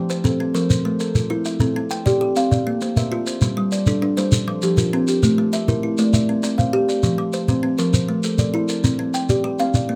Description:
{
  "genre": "southern african traditional, mbira-style interlocking cycle",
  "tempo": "133 BPM (dotted quarters)",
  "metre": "12/8",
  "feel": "straight",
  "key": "C mixolydian",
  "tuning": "A4 = 438 Hz",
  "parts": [
    { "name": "kalimba", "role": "arpeggios", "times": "0.0-10.0 s", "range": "F3 to G5", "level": "-23 LUFS", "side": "equal", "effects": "none" },
    { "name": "kalimba", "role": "arpeggios", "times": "0.0-10.0 s", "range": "F3 to G5", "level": "-26 LUFS", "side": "equal", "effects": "none" },
    { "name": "shekere", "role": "percussion", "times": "0.1-9.9 s", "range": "none", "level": "-24 LUFS", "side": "equal", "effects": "none" }
  ],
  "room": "little or no reverb",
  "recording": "close, detailed microphones",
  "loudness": "-20 LUFS",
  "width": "mono",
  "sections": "0.0-1.6 A section; 1.6-10.0 B section",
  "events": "none",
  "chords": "0.0 F; 0.7 Am; 1.6 C; 2.5 Bb; 3.4 G5; 4.3 F; 5.2 A5; 6.1 C; 7.0 F5; 7.9 Am; 8.8 C5",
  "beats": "0.25 0.70 1.15 | 1.61 2.06 2.51 2.97 | 3.42 3.87 4.32 4.78 | 5.23 5.68 6.13 6.58 | 7.04 7.49 7.94 8.39 | 8.84 9.29 9.74"
}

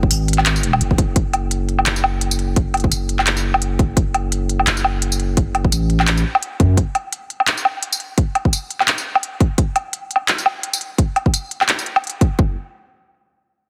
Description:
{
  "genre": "half-time drum and bass",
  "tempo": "171 BPM",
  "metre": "4/4",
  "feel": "swing 57% on 16ths, half-time",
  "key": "F# minor",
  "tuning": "A4 = 442 Hz",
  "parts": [
    { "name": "saturated sub bass", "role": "bass", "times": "0.0-6.8, 12.4-12.6 s", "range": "F#1 to F#2", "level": "-22 LUFS", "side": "equal", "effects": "none" },
    { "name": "electronic kick drum", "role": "drums", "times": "0.0-12.5 s", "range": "none", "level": "-18 LUFS", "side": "equal", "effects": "none" },
    { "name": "organic electronic drum kit", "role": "drums", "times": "0.1-12.3 s", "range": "handclaps, hi-hat, tambourine, woodblock", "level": "-21 LUFS", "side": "equal", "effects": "none" }
  ],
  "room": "light reverb",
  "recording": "heavily compressed radio sound",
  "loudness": "-18 LUFS",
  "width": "mono",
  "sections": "0.0-1.2 A section; 1.2-12.4 B section; 12.4-13.7 C section",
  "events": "drop 0.0-1.2",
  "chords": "none",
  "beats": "0.11 0.46 0.81 | 1.16 1.51 1.86 2.21 | 2.56 2.91 3.27 3.62 | 3.97 4.32 4.67 5.02 | 5.37 5.72 6.07 6.42 | 6.77 7.12 7.48 7.83 | 8.18 8.53 8.88 9.23 | 9.58 9.93 10.28 10.63 | 10.98 11.34 11.69 12.04 | 12.39"
}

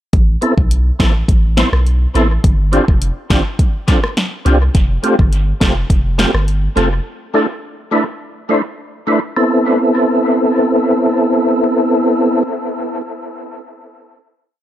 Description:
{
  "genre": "dancehall",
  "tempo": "104 BPM",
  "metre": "4/4",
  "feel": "straight",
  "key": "A minor",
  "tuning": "A4 = 441 Hz",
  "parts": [
    { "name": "punchy sub bass", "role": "bass", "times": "0.1-7.0 s", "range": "F1 to C2", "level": "-15 LUFS", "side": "equal", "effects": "none" },
    { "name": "deep house drum kit", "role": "drums", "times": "0.1-6.9 s", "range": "hi-hat, kick drum, rim click, snare drum", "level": "-15 LUFS", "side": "equal", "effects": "dub echo" },
    { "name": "percussive tonewheel organ", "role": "accompaniment", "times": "0.4-12.4 s", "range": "A3 to C5", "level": "-15 LUFS", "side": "equal", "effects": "chorus vibrato, fast rotary speaker, sidechain pumping, dub echo" }
  ],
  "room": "little or no reverb",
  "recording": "echo-heavy mix",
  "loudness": "-12 LUFS",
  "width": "side -12 dB against mid",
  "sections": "0.1-9.4 chorus; 9.4-11.7 final chord",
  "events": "none",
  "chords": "0.1 Amadd9; 2.4 G7sus4; 4.7 Fadd9; 7.1 Dsus2; 9.4 Amadd9",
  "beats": "| 0.13 0.71 1.29 1.86 | 2.44 3.02 3.59 4.17 | 4.75 5.33 5.90 6.48 | 7.06 7.63 8.21 8.79 | 9.36 9.94 10.52 11.09"
}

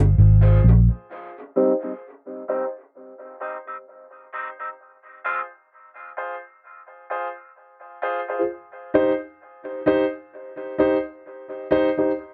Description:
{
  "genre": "reggae",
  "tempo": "65 BPM",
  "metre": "4/4",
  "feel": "swing 57% on 16ths",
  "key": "unclear",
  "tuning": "A4 = 440 Hz",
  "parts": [
    { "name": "vintage muted fingered electric bass", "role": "bass", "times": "0.0-0.9 s", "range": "G1 to Bb1", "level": "-16 LUFS", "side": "equal", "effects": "none" },
    { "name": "clean electric guitar", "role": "accompaniment", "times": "1.6-5.4 s", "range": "G3 to F4", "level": "-32 LUFS", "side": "equal", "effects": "subtle chorus, high-pass filter, low-pass filter, dub echo" },
    { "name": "warm concert grand piano", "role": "stabs", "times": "1.6-12.1 s", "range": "Eb4 to C5", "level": "-25 LUFS", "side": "equal", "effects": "high-pass filter, low-pass filter, dub echo" }
  ],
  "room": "light reverb",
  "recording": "dry, close 1970s-style studio recording",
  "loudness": "-22 LUFS",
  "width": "mono",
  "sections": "0.0-1.1 A section; 1.1-12.3 B section",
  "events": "break 0.0-1.1, 4.8-12.3; filter sweep 0.0-12.3",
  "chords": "0.0 N.C.; 1.1 Cm; 4.8 Fm; 8.5 Cm",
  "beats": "0.17 | 1.10 2.02 2.94 3.86 | 4.79 5.71 6.63 7.55 | 8.48 9.40 10.32 11.25"
}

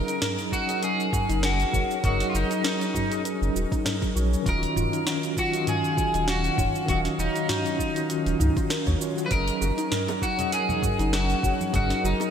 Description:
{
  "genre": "sunset chillout",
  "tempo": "99 BPM",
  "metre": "4/4",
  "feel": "swing 55% on 16ths",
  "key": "F# major",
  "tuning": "A4 = 445 Hz",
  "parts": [
    { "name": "electric guitar at the edge of break-up", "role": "melody", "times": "0.0-12.3 s", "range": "D#4 to B4", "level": "-28 LUFS", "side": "left 1 dB", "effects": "lush chorus, digital delay" },
    { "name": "mellow tine electric piano", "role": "accompaniment", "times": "0.0-12.3 s", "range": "D#3 to E#5", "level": "-29 LUFS", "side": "equal", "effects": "medium stereo tremolo, auto-pan" },
    { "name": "airy breathy pad", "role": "sustained chords", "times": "0.0-12.3 s", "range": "D#3 to E#5", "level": "-34 LUFS", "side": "right 1 dB", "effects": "chorus" },
    { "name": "soft round pluck", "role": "arpeggios", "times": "0.0-12.3 s", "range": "D#4 to C#5", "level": "-35 LUFS", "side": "left 1 dB", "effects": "ensemble chorus, digital delay" },
    { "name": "smooth R&B drum kit", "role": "drums", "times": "0.1-12.3 s", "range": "cabasa, hi-hat, snare drum, toms", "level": "-31 LUFS", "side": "right 1 dB", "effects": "studio reverb, gated reverb" },
    { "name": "electronic kick drum", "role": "drums", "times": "0.5-11.9 s", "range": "none", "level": "-29 LUFS", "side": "equal", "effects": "studio reverb" },
    { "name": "warm sub bass", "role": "bass", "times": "1.3-12.1 s", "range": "D#1 to D#2", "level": "-26 LUFS", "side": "equal", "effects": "none" },
    { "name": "bongos and congas", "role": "percussion", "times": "9.6-12.3 s", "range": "none", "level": "-36 LUFS", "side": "right 3 dB", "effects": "none" }
  ],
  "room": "moderate lush hall reverb, RT60 2.9 s",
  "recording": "bright 1980s-style digital production",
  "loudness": "-22 LUFS",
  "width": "side -8 dB against mid",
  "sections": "0.0-12.3 A section",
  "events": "none",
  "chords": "0.0 F#6; 4.5 D#m9; 9.3 F#6",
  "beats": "0.22 0.82 1.43 | 2.04 2.64 3.25 3.85 | 4.46 5.07 5.67 6.28 | 6.88 7.49 8.10 8.70 | 9.31 9.91 10.52 11.13 | 11.73"
}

